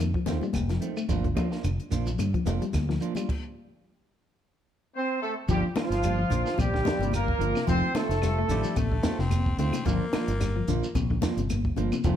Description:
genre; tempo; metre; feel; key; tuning
afrobeat; 110 BPM; 4/4; swing 55% on 16ths; G minor; A4 = 439 Hz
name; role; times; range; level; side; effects
clean electric guitar; arpeggios; 0.0-12.2 s; C3 to A3; -33 LUFS; left 7 dB; spring reverb
fingered electric bass; bass; 0.0-12.2 s; F1 to G2; -29 LUFS; equal; none
shekere; percussion; 0.0-12.2 s; none; -36 LUFS; right 2 dB; none
compact cocktail drum kit; drums; 0.1-12.2 s; crash cymbal, hi-hat, kick drum, snare drum; -31 LUFS; equal; none
semi-hollow electric guitar; stabs; 0.3-12.2 s; Eb3 to F4; -34 LUFS; right 7 dB; none
congas; percussion; 0.3-12.2 s; none; -34 LUFS; left 6 dB; none
claves; percussion; 0.5-12.0 s; none; -48 LUFS; right 3 dB; none
warm horn section; melody; 5.0-9.0 s; F3 to C5; -30 LUFS; equal; slapback echo
clear trombone; second line; 5.0-9.0 s; F3 to C4; -34 LUFS; right 4 dB; none
raspy baritone saxophone; second line; 8.5-10.9 s; G3 to C4; -34 LUFS; left 3 dB; none
room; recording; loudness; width
moderate large studio reverb, RT60 1.3 s; none; -24 LUFS; side -10 dB against mid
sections
0.0-5.5 A section; 5.5-12.2 B section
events
stop 3.3-5.5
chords
0.0 F7; 1.1 Gm7; 3.3 N.C.; 5.5 Gm7; 7.7 F7; 9.9 Gm7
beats
0.00 0.55 | 1.10 1.65 2.20 2.75 | 3.29 3.84 4.39 4.94 | 5.49 6.04 6.58 7.13 | 7.68 8.22 8.77 9.32 | 9.86 10.41 10.95 11.50 | 12.04

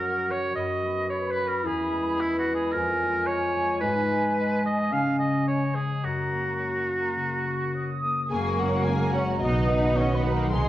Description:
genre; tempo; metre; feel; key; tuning
cinematic, heroic adventure film score; 109 BPM; 4/4; straight; F# major; A4 = 440 Hz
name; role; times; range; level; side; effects
clear oboe; second line; 0.0-8.0 s; E4 to E#5; -28 LUFS; right 1 dB; none
large flute ensemble; second line; 0.0-10.7 s; F#5 to D#6; -32 LUFS; equal; none
mellow clarinet; second line; 0.0-8.0 s; G#3 to F#4; -29 LUFS; equal; none
concert harp; arpeggios; 0.0-10.7 s; E2 to D#5; -32 LUFS; left 4 dB; none
warm symphonic violin section; melody; 8.3-10.7 s; D#5 to B#5; -34 LUFS; left 3 dB; none
rich symphonic violin section; second line; 8.3-10.7 s; D#4 to B4; -34 LUFS; left 1 dB; none
rich symphonic viola section; accompaniment; 8.3-10.7 s; G#3 to D#4; -33 LUFS; right 1 dB; none
bright trombone section; sustained chords; 8.3-10.7 s; C#3 to G#3; -32 LUFS; right 2 dB; none
mellow French horn section; sustained chords; 8.3-10.7 s; G#3 to F#4; -34 LUFS; left 2 dB; none
mellow trumpet section; stabs; 8.3-10.7 s; G#4 to D#5; -30 LUFS; right 1 dB; none
clear symphonic cello section; bass; 8.3-10.7 s; G#3 to D#4; -31 LUFS; right 2 dB; none
clear symphonic double bass section; bass; 8.3-10.7 s; F#1 to B#1; -26 LUFS; right 2 dB; none
room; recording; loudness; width
wet recital hall reverb, RT60 1.2 s; worn, warbling old tape, cassette tape, warbly pitch drift; -23 LUFS; side -14 dB against mid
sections
0.0-8.3 A section; 8.3-10.7 A section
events
none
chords
0.0 F#; 0.6 B/F#; 1.7 E; 2.7 C#/E#; 3.8 G#m; 4.9 C#5; 6.0 F#; 8.3 F#add9; 9.4 B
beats
0.02 0.57 1.11 | 1.66 2.20 2.75 3.29 | 3.82 4.37 4.92 5.47 | 6.03 6.60 7.17 7.75 | 8.31 8.87 9.42 9.97 | 10.52

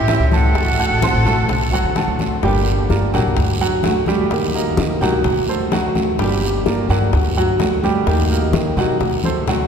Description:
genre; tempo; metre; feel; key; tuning
latin, Cuban son and guajira; 128 BPM; 4/4; straight; G harmonic minor; A4 = 440 Hz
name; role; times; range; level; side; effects
silver concert flute; melody; 0.0-2.2 s; E5 to F#5; -25 LUFS; right 2 dB; none
clear studio violin section; second line; 0.0-2.2 s; G4 to A4; -29 LUFS; equal; none
flamenco guitar; accompaniment; 0.0-9.7 s; D3 to G4; -24 LUFS; left 2 dB; none
warm grand piano; arpeggios; 0.0-9.7 s; F#3 to F#6; -20 LUFS; right 2 dB; none
upright bass; bass; 0.0-9.7 s; G1 to Eb3; -19 LUFS; equal; none
bongos; percussion; 0.1-9.7 s; none; -27 LUFS; left 4 dB; none
congas; percussion; 0.1-9.6 s; none; -25 LUFS; left 2 dB; none
guiro; percussion; 0.1-9.7 s; none; -32 LUFS; right 5 dB; none
room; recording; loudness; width
wet cathedral reverb, RT60 6.1 s; recorded in a church or concert hall; -15 LUFS; side -7 dB against mid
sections
0.0-2.4 A section; 2.4-9.7 B section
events
drum fill 2.2, 9.2-9.7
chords
0.0 A7; 0.6 D7; 2.4 Gm7; 3.4 D7; 4.3 Eb; 5.3 D7; 6.2 Gm7; 7.1 D7; 8.1 Eb; 9.0 D7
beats
0.09 | 0.56 1.02 1.49 1.96 | 2.43 2.90 3.37 3.84 | 4.31 4.78 5.25 5.72 | 6.19 6.66 7.13 7.60 | 8.07 8.54 9.01 9.48

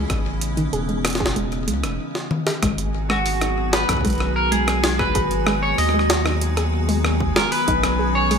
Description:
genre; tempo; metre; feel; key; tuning
IDM; 95 BPM; 4/4; straight; G# minor; A4 = 440 Hz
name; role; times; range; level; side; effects
clean electric guitar; melody; 0.0-8.4 s; F#4 to D#5; -23 LUFS; equal; lush chorus, ping-pong delay
icy glass pad; sustained chords; 0.0-8.4 s; C#3 to F#4; -26 LUFS; left 1 dB; chorus, built-in reverb, sidechain pumping
soft round pluck; arpeggios; 0.0-8.4 s; D#3 to G#4; -28 LUFS; right 1 dB; chorus, digital delay
rubbery square bass; bass; 0.0-8.4 s; E1 to D#2; -24 LUFS; equal; tube saturation
bubbling stepped-filter texture; texture; 0.0-8.4 s; D#4 to G#5; -33 LUFS; right 2 dB; chorus, built-in reverb
electronic kick drum; drums; 0.1-7.8 s; none; -26 LUFS; equal; small room ambience
jungle sampler-style drum kit; drums; 0.1-8.4 s; hi-hat, rim click, snare drum, toms; -24 LUFS; equal; small room ambience, ping-pong delay
room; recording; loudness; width
moderate plate reverb, RT60 2.1 s; bright 1980s-style digital production; -18 LUFS; side -6 dB against mid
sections
0.0-2.6 A section; 2.6-8.4 B section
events
drum fill 2.1-2.6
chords
0.0 Amaj7; 2.6 G#m7; 7.7 Badd9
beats
| 0.10 0.73 1.36 1.99 | 2.62 3.26 3.89 4.52 | 5.15 5.78 6.41 7.04 | 7.68 8.31

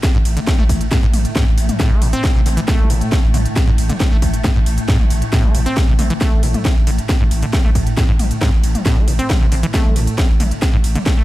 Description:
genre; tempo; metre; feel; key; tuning
driving peak-time techno; 136 BPM; 4/4; straight; unclear; A4 = 441 Hz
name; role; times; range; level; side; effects
swarming drone; drone; 0.0-11.2 s; A2 to A3; -25 LUFS; equal; built-in reverb, sidechain pumping
electronic kick drum; drums; 0.0-11.2 s; none; -16 LUFS; equal; overdrive, studio reverb
techno drum kit; drums; 0.0-11.2 s; hi-hat, ride cymbal, snare drum, toms; -22 LUFS; equal; overdrive, studio reverb
acid bass, saw; riff; 0.1-11.2 s; G#2 to C4; -23 LUFS; equal; sidechain pumping, tape echo
saturated sub bass; bass; 0.1-11.2 s; A1; -19 LUFS; equal; overdrive, sidechain pumping, low-pass filter
room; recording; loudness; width
digital ambience; echo-heavy mix; -13 LUFS; side -16 dB against mid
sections
0.0-11.2 A section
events
none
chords
none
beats
| 0.03 0.47 0.91 1.35 | 1.80 2.24 2.68 3.12 | 3.56 4.00 4.44 4.88 | 5.33 5.77 6.21 6.65 | 7.09 7.53 7.97 8.41 | 8.86 9.30 9.74 10.18 | 10.62 11.06

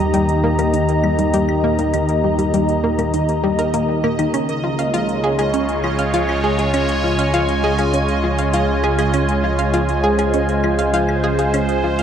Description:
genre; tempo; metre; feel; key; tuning
ambient, sequencer-driven space music; 100 BPM; 4/4; straight; unclear; A4 = 440 Hz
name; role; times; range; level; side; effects
sweeping resonant pad; sustained chords; 0.0-12.0 s; Db3 to Bb5; -18 LUFS; equal; chorus
analog pluck; riff; 0.0-12.0 s; Eb3 to F5; -21 LUFS; equal; chorus, analog delay
warm sub bass; bass; 0.0-12.0 s; Db2 to Eb2; -24 LUFS; equal; none
pulsing gated texture; texture; 0.0-12.0 s; Eb5; -26 LUFS; equal; chorus, built-in reverb
electronic hi-hat and claves; percussion; 0.1-12.0 s; none; -34 LUFS; left 5 dB; overdrive, analog delay
room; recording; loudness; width
wet cathedral reverb, RT60 5.5 s; in a vast, echoing space, cassette tape; -15 LUFS; side -8 dB against mid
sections
0.0-12.0 A section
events
none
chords
0.0 Eb; 4.3 Db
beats
0.14 0.74 1.34 | 1.94 2.54 3.14 3.74 | 4.34 4.94 5.54 6.14 | 6.74 7.34 7.94 8.54 | 9.14 9.74 10.34 10.94 | 11.54

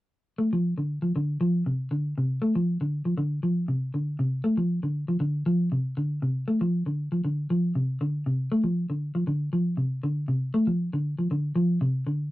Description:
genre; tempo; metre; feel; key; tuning
afrobeat; 118 BPM; 4/4; straight; D minor; A4 = 440 Hz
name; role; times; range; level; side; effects
semi-hollow electric guitar; arpeggios; 0.4-12.3 s; C3 to A3; -24 LUFS; equal; none
room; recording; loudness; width
moderate booth ambience, RT60 0.2 s; rough rehearsal-room recording, tube saturation; -24 LUFS; side -17 dB against mid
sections
0.4-12.3 A section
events
none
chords
none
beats
| 0.39 0.89 1.40 1.91 | 2.41 2.92 3.43 3.94 | 4.44 4.95 5.46 5.97 | 6.48 6.98 7.49 8.00 | 8.51 9.02 9.53 10.04 | 10.54 11.05 11.56 12.07

